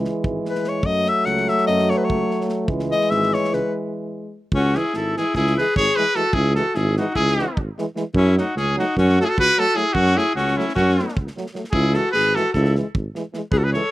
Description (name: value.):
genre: balkan folk, Balkan brass band.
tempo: 299 BPM (eighths).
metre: 9/8.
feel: straight.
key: C# minor.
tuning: A4 = 442 Hz.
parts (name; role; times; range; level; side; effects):
mellow French horn; accompaniment; 0.0-13.8 s; G#3 to A3; -27 LUFS; left 3 dB; none.
warm euphonium; accompaniment; 0.0-13.8 s; E3 to F#3; -27 LUFS; right 4 dB; slapback echo.
dark tuba; bass; 0.0-13.7 s; G#1 to F#2; -21 LUFS; right 1 dB; none.
modern studio drum kit; percussion; 0.0-13.8 s; kick drum, snare drum; -28 LUFS; right 1 dB; none.
bright alto saxophone; second line; 0.5-13.9 s; C#4 to F#5; -23 LUFS; left 3 dB; none.
clear trumpet; melody; 4.6-13.9 s; E4 to C#5; -21 LUFS; right 1 dB; none.
room: little or no reverb.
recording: recorded outdoors, with no room sound.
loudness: -17 LUFS.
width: side -16 dB against mid.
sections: 0.0-4.5 A section; 4.5-13.9 B section.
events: speeding up 0.0-13.9; alto saxophone solo 0.0-4.5; break 3.6-4.5.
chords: 0.0 C#m (rootless); 0.8 F#m; 2.7 C#m; 8.1 F#m; 11.7 C#m.